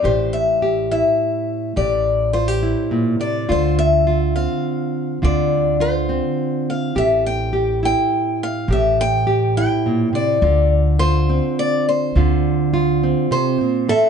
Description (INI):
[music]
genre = acoustic folk-pop ballad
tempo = 104 BPM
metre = 3/4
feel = straight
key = unclear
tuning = A4 = 440 Hz
[part]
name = picked old ladder-braced acoustic guitar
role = melody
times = 0.0-14.1 s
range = C5 to G5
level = -20 LUFS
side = left 3 dB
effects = none
[part]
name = warm cello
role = second line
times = 0.0, 13.9-14.1 s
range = C4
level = -38 LUFS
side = left 9 dB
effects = none
[part]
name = nylon-string guitar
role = accompaniment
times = 0.0-14.1 s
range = A2 to A4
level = -20 LUFS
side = right 2 dB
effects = none
[part]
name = upright bass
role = bass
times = 0.0-13.1 s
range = A1 to D2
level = -20 LUFS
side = equal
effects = none
[part]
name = warm chamber string section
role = sustained chords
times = 13.9-14.1 s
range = E3 to C4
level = -40 LUFS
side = left 1 dB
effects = none
[sound]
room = light reverb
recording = nothing above 10.5 kHz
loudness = -16 LUFS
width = side -7 dB against mid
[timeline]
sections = 0.0-13.9 A section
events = none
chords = 0.0 Am7; 3.5 Dm7; 7.0 Am7; 10.4 Dm7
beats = | 0.04 0.61 1.19 | 1.76 2.34 2.92 | 3.49 4.07 4.64 | 5.22 5.79 6.37 | 6.95 7.53 8.11 | 8.69 9.27 9.84 | 10.42 11.00 11.58 | 12.16 12.74 13.32 | 13.90